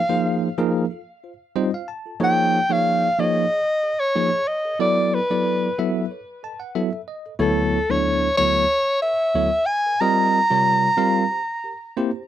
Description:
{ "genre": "jazz", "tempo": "92 BPM", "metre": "4/4", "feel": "swing 53% on 16ths", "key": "unclear", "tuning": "A4 = 438 Hz", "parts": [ { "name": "mellow soprano saxophone", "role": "melody", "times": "0.0-12.0 s", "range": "A4 to Bb5", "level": "-20 LUFS", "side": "equal", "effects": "none" }, { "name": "bell-like tine electric piano", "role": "accompaniment", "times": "0.1-12.2 s", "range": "D2 to A5", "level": "-22 LUFS", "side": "equal", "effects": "medium stereo tremolo" } ], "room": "light reverb", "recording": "dry, close 1970s-style studio recording", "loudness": "-18 LUFS", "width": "side -11 dB against mid", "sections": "0.0-12.3 A section", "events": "tine electric piano fill 1.2-2.2, 6.1-7.4", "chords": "0.0 Ab69/F; 0.9 F7; 2.2 Bbm11; 4.8 E5; 6.1 A5; 7.4 Dmaj9; 10.0 Gm7b5; 11.3 C7" }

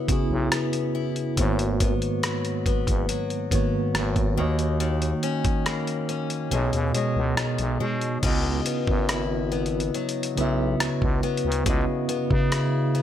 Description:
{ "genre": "contemporary R&B", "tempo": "70 BPM", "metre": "4/4", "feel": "straight", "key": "C# dorian", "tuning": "A4 = 436 Hz", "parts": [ { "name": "mellow tine electric piano", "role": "accompaniment", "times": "0.0-13.0 s", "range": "G#2 to E5", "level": "-26 LUFS", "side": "right 2 dB", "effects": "medium stereo tremolo" }, { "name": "picked steel-string acoustic guitar", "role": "arpeggios", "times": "0.0-13.0 s", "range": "G#2 to E4", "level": "-29 LUFS", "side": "left 9 dB", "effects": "ping-pong delay" }, { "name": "growling FM bass", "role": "bass", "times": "0.1-13.0 s", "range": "F#1 to C#3", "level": "-27 LUFS", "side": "equal", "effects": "none" }, { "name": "dusty soul sampler-style drum kit", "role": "drums", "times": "0.1-13.0 s", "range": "crash cymbal, hi-hat, kick drum, rim click", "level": "-26 LUFS", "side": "equal", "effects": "none" } ], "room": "light reverb", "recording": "none", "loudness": "-22 LUFS", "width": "side -10 dB against mid", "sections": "0.0-8.2 A section; 8.2-13.0 B section", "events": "kick muted 6.5-8.2", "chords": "0.0 C#m11; 1.4 G#m11; 4.4 D#m7; 6.5 B69; 8.2 C#m11" }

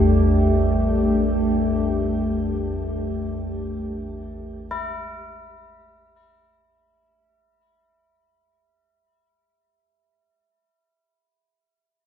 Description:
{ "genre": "ambient", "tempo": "free time", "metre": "none", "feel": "none", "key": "unclear", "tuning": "A4 = 439 Hz", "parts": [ { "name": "deep dark ambient pad", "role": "sustained chords", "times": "0.0-6.7 s", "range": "A3 to G4", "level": "-22 LUFS", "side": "left 1 dB", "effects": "chorus, built-in reverb, shimmer reverb" }, { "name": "tubular bells", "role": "arpeggios", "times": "0.0-10.5 s", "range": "E4 to G4", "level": "-36 LUFS", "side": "left 1 dB", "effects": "tape echo, shimmer reverb" }, { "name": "deep rumbling drone", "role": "drone", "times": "0.0-6.7 s", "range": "A1 to E2", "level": "-23 LUFS", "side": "equal", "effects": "built-in reverb, lush chorus" }, { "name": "quartz singing bowl", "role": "texture", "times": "0.0-6.7 s", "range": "E5", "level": "-36 LUFS", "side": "right 2 dB", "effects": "shimmer reverb" } ], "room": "wet echo chamber reverb, RT60 2.2 s", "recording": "echo-heavy mix", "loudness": "-20 LUFS", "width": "side -9 dB against mid", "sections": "0.0-6.7 A section", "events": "fade-out on ambient pad 0.0-6.7; filter sweep on synth drone 0.0-6.7; fade-out 1.5-6.7", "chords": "0.0 A5" }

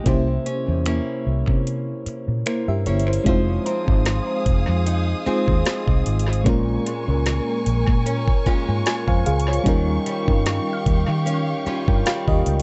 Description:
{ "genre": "contemporary R&B", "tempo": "75 BPM", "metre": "4/4", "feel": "swing 54% on 16ths", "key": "F minor", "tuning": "A4 = 440 Hz", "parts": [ { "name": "FM electric piano with tremolo", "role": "accompaniment", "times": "0.0-12.6 s", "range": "G3 to Ab5", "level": "-27 LUFS", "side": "equal", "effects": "analog delay" }, { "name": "picked acoustic archtop guitar", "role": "arpeggios", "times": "0.0-12.6 s", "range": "Bb2 to Ab4", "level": "-31 LUFS", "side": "equal", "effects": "analog delay" }, { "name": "vintage muted fingered electric bass", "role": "bass", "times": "0.1-12.6 s", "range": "F1 to Eb3", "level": "-24 LUFS", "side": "equal", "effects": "none" }, { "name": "smooth R&B drum kit", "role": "drums", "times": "0.1-12.6 s", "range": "finger snaps, hi-hat, kick drum, snare drum", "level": "-24 LUFS", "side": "equal", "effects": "analog delay" }, { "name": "warm studio string section", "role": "sustained chords", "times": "3.3-12.6 s", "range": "G4 to Eb6", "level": "-33 LUFS", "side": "equal", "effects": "none" }, { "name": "mallet-like synth pluck", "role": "texture", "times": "3.7-12.6 s", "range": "Bb5 to F6", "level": "-42 LUFS", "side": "equal", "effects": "none" } ], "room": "digital ambience", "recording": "echo-heavy mix, nothing above 8.0 kHz", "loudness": "-21 LUFS", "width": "mono", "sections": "0.0-3.3 A section; 3.3-12.6 B section", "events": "kick muted 1.7-3.3; FM electric piano fill 8.5-9.7", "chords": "0.1 C7b9; 3.3 Fm7; 6.5 Bbm7; 9.7 Eb9" }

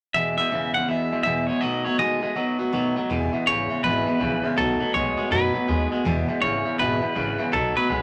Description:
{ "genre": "rockabilly", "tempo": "163 BPM", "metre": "4/4", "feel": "swing 63% on 8ths", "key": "E major", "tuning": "A4 = 440 Hz", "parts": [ { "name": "clean electric guitar", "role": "melody", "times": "0.1-8.0 s", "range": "A4 to F#5", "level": "-26 LUFS", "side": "equal", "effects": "none" }, { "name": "picked steel-string acoustic guitar", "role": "accompaniment", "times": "0.1-8.0 s", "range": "E2 to F#4", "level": "-29 LUFS", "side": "equal", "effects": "none" }, { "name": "twangy electric guitar", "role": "riff", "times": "0.1-8.0 s", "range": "E2 to G#3", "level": "-29 LUFS", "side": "equal", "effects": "none" }, { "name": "upright bass", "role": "bass", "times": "3.1-8.0 s", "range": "E1 to F#2", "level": "-32 LUFS", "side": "equal", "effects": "none" } ], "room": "moderate studio reverb, RT60 0.6 s", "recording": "none", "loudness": "-23 LUFS", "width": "mono", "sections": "0.1-3.1 A section; 3.1-8.0 B section", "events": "none", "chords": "0.1 E; 1.6 B7; 3.1 E; 4.6 B7; 6.1 E" }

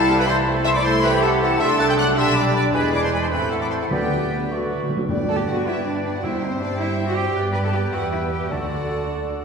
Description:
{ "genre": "quick classical-period movement for symphony orchestra", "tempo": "105 BPM (dotted quarters)", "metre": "6/8", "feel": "straight", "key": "G major", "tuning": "A4 = 439 Hz", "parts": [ { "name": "rich studio violin section", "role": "melody", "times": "0.0-9.4 s", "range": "C5 to A6", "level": "-28 LUFS", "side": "left 4 dB", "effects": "none" }, { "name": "clear clarinet", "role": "second line", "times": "0.0-9.4 s", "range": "D4 to C5", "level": "-30 LUFS", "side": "left 2 dB", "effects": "none" }, { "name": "dark studio violin section", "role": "second line", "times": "0.0-9.4 s", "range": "G4 to A5", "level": "-30 LUFS", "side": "left 2 dB", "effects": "none" }, { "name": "silver concert flute", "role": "second line", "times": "0.0-9.4 s", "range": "D5 to F#6", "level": "-29 LUFS", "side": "left 2 dB", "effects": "none" }, { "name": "warm cor anglais", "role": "second line", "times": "0.0-9.4 s", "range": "C5 to E5", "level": "-32 LUFS", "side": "equal", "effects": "none" }, { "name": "rich studio viola section", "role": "accompaniment", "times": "0.0-9.4 s", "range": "C3 to F#4", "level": "-30 LUFS", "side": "equal", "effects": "none" }, { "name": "warm bassoon", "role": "accompaniment", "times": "0.0-9.4 s", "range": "D3 to B3", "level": "-31 LUFS", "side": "right 2 dB", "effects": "none" }, { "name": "dark French horn section", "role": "sustained chords", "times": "0.0-9.4 s", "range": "G3 to A4", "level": "-27 LUFS", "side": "left 1 dB", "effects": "none" }, { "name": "clear trumpet", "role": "stabs", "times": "0.0-4.5 s", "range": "G4 to A5", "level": "-26 LUFS", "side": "right 2 dB", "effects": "none" }, { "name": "warm studio cello section", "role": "bass", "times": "0.0-9.4 s", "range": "C4 to B4", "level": "-27 LUFS", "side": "right 3 dB", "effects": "none" }, { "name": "warm studio double bass section", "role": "bass", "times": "0.0-9.4 s", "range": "A1 to G2", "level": "-27 LUFS", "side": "right 2 dB", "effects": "none" }, { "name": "timpani", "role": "percussion", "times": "3.9-9.1 s", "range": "G2 to D3", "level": "-28 LUFS", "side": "equal", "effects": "none" } ], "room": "wet concert hall reverb, RT60 1.9 s", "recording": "minimal, uncompressed stereo recording", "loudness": "-18 LUFS", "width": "side -5 dB against mid", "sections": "0.0-5.1 A section; 5.1-9.4 B section", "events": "timpani fill 4.5-5.1", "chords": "0.5 Am/C; 1.6 D7/C; 2.2 G/B; 2.7 E7; 3.3 Am; 3.9 G/D; 4.5 D; 5.1 G; 6.2 C/G; 7.4 G; 7.9 Em; 8.5 D" }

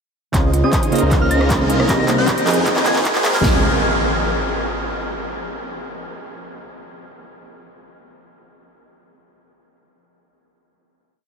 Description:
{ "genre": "future bass", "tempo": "155 BPM", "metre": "4/4", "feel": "half-time", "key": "Db lydian", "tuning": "A4 = 439 Hz", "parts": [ { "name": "glassy digital keys", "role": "accompaniment", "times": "0.3-3.6 s", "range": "C3 to Eb5", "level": "-26 LUFS", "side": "right 4 dB", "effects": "none" }, { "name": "airy breathy pad", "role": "sustained chords", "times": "0.9-3.6 s", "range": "Db3 to C5", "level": "-31 LUFS", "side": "equal", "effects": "none" }, { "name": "thumb-piano-like synth pluck", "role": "arpeggios", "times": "0.3-3.6 s", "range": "Bb3 to Eb5", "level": "-28 LUFS", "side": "right 1 dB", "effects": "chorus, sidechain pumping, diffuse ambient delay" }, { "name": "supersaw chords", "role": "riff", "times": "0.3-3.6 s", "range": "F3 to C6", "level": "-22 LUFS", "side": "equal", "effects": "sidechain pumping, low-pass filter, diffuse ambient delay" }, { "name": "wide detuned saw bass", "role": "bass", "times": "0.3-3.6 s", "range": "C2 to Ab2", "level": "-21 LUFS", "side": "equal", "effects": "chorus, sidechain pumping" }, { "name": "big-room dance drum kit", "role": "drums", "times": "0.3-3.5 s", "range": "handclaps, kick drum, snare drum", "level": "-20 LUFS", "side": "equal", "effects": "none" }, { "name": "big-room dance drum kit", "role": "drums", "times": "0.3-3.4 s", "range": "handclaps, hi-hat, rim click", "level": "-23 LUFS", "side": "equal", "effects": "none" }, { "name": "riser and impact", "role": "sound effects", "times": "1.9-5.0 s", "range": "none", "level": "-27 LUFS", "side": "equal", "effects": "none" }, { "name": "soft synth bell", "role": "melody", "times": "0.6-3.4 s", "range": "Eb6 to Bb6", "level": "-26 LUFS", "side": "equal", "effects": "chorus, phaser, sidechain pumping, low-pass filter, tape echo" } ], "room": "wet huge ambient reverb, RT60 7.7 s", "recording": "dreamy mix soaked in reverb, high-pass filter", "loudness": "-15 LUFS", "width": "side -6 dB against mid", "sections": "0.3-3.4 build; 3.4-5.0 final chord", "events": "build-up 0.3-3.4; drum fill 0.3-3.4; filter sweep on supersaw synth 0.3-3.4; filter sweep 0.3-3.4", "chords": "0.3 Dbmaj9; 0.9 Bbm11/Db; 1.9 Cm7; 2.5 Fm11; 3.4 Dbmaj9" }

